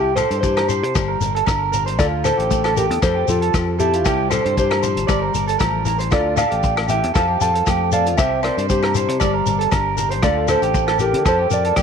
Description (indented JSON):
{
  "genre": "highlife guitar band",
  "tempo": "116 BPM",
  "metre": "4/4",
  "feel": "swing 54% on 16ths",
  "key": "D minor",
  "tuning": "A4 = 440 Hz",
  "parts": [
    { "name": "mellow electric guitar", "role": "melody", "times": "0.0-11.8 s", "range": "E4 to A5", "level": "-21 LUFS", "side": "left 1 dB", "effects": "none" },
    { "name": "flamenco guitar", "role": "accompaniment", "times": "0.0-11.8 s", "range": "C3 to C5", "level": "-27 LUFS", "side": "left 15 dB", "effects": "none" },
    { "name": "electric guitar through a small old amp", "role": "arpeggios", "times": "0.0-11.8 s", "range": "F4 to D5", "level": "-22 LUFS", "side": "right 12 dB", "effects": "tape echo" },
    { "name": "fingered electric bass", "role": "bass", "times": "0.0-11.8 s", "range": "G1 to D3", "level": "-24 LUFS", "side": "left 1 dB", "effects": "none" },
    { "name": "warm soul drum kit", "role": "drums", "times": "0.2-11.8 s", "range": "hi-hat, kick drum, rim click", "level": "-23 LUFS", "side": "left 1 dB", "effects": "none" },
    { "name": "agogo bells", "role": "percussion", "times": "0.2-11.8 s", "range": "none", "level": "-29 LUFS", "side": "left 15 dB", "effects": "none" },
    { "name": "shekere", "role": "percussion", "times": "0.2-11.8 s", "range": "none", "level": "-28 LUFS", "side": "left 8 dB", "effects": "none" }
  ],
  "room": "moderate echo chamber reverb, RT60 1.8 s, small room ambience",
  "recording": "1960s-style stereo with parts hard left and right",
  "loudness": "-16 LUFS",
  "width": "side -7 dB against mid",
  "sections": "0.0-11.8 A section",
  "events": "none",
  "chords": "0.0 C; 1.0 Gm; 2.0 Dm; 3.0 Fadd9; 4.1 C; 5.1 Gm; 6.1 Dm; 7.2 Fadd9; 8.2 C; 9.2 Gm; 10.2 Dm; 11.3 Fadd9"
}